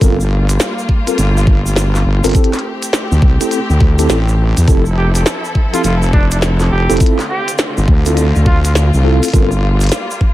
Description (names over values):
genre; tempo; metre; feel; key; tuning
glitch hop; 103 BPM; 4/4; swing 64% on 16ths; D minor; A4 = 440 Hz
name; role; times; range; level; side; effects
clear studio string section; sustained chords; 0.0-10.3 s; D3 to A4; -22 LUFS; left 1 dB; vintage 12-bit sampler grit, sidechain pumping
mellow tine electric piano; stabs; 0.0-9.5 s; C4 to Bb4; -18 LUFS; equal; medium stereo tremolo, sidechain pumping, digital delay
wobble bass; bass; 0.0-9.9 s; F1 to E2; -12 LUFS; equal; chorus
electronic kick drum; drums; 0.0-10.3 s; none; -11 LUFS; equal; overdrive
glitchy drum kit; drums; 0.0-10.1 s; hi-hat, snare drum; -19 LUFS; equal; none
cabasa; percussion; 0.0-10.2 s; none; -26 LUFS; right 2 dB; none
warm trumpet; melody; 5.0-8.7 s; D4 to G4; -22 LUFS; right 2 dB; vintage 12-bit sampler grit, digital delay
room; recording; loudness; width
little or no reverb; vinyl crackle; -11 LUFS; side -15 dB against mid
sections
0.0-10.3 A section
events
none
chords
0.0 Gm11; 2.3 Am7; 4.7 Fmaj7; 7.0 Dm7; 9.3 Gm11